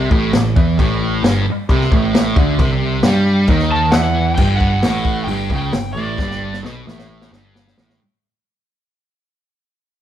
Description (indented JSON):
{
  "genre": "garage rock duo or trio",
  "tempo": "134 BPM",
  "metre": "4/4",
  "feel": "straight",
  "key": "unclear",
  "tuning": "A4 = 440 Hz",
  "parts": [
    { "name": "thick fuzz guitar", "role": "riff", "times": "0.0-8.0 s", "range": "G2 to G3", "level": "-17 LUFS", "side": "right 2 dB", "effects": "distortion" },
    { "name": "picked electric bass", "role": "bass", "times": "0.0-8.0 s", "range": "G1 to G2", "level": "-21 LUFS", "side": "equal", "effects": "overdrive" },
    { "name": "vintage drum kit", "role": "drums", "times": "0.1-8.0 s", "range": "crash cymbal, hi-hat, kick drum, snare drum", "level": "-17 LUFS", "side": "left 1 dB", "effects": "none" },
    { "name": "overdriven slide guitar", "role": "melody", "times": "3.7-6.6 s", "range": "D5 to A5", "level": "-21 LUFS", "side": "right 1 dB", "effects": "none" }
  ],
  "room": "light reverb",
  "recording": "band playing live in one room",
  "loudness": "-13 LUFS",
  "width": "side -11 dB against mid",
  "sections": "0.0-4.4 A section; 4.4-8.0 B section",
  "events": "fade-out 4.4-8.0; drum fill 6.2-8.0",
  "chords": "0.0 A5; 4.4 G5"
}